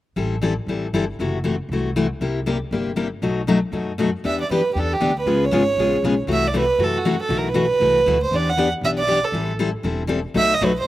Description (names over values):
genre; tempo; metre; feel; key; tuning
acoustic string swing (jazz manouche); 236 BPM; 4/4; swing 56% on 8ths; E minor; A4 = 438 Hz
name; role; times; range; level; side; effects
picked steel-string acoustic guitar; accompaniment; 0.2-10.7 s; B2 to A4; -21 LUFS; left 3 dB; slapback echo
upright bass; bass; 0.2-10.8 s; E1 to F#2; -27 LUFS; equal; none
warm violin; melody; 4.3-10.9 s; F#4 to F#5; -20 LUFS; right 3 dB; slapback echo
room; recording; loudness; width
little or no reverb; recorded outdoors, with no room sound; -18 LUFS; side -14 dB against mid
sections
0.2-4.2 A section; 4.2-10.9 B section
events
none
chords
0.2 Am7; 1.2 F#m7b5; 2.2 C7; 3.2 B7; 4.2 Em7; 5.3 C#7; 6.3 F#m7b5/C; 7.3 B7sus4; 8.3 Em7; 9.3 Am7; 10.3 B7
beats
| 0.17 0.42 0.68 0.93 | 1.19 1.44 1.70 1.95 | 2.20 2.46 2.71 2.97 | 3.22 3.48 3.73 3.98 | 4.24 4.49 4.75 5.00 | 5.26 5.51 5.76 6.02 | 6.27 6.53 6.78 7.04 | 7.29 7.55 7.80 8.06 | 8.31 8.56 8.82 9.07 | 9.33 9.58 9.84 10.09 | 10.35 10.60 10.85